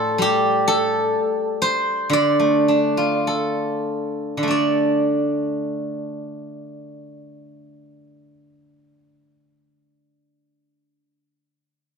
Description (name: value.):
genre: chinese traditional, Chinese solo plucked strings.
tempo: 48-69 BPM.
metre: 4/4.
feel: rubato.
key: D yu mode.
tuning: A4 = 439 Hz.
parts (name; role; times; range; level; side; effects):
steel-string zither; solo; 0.0-11.0 s; A2 to D6; -18 LUFS; equal; none.
room: moderate recital hall reverb, RT60 1.6 s.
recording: close, detailed microphones.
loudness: -18 LUFS.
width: side -5 dB against mid.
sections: 0.0-4.5 A section; 4.5-9.4 B section.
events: slowing down 0.0-4.5.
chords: none.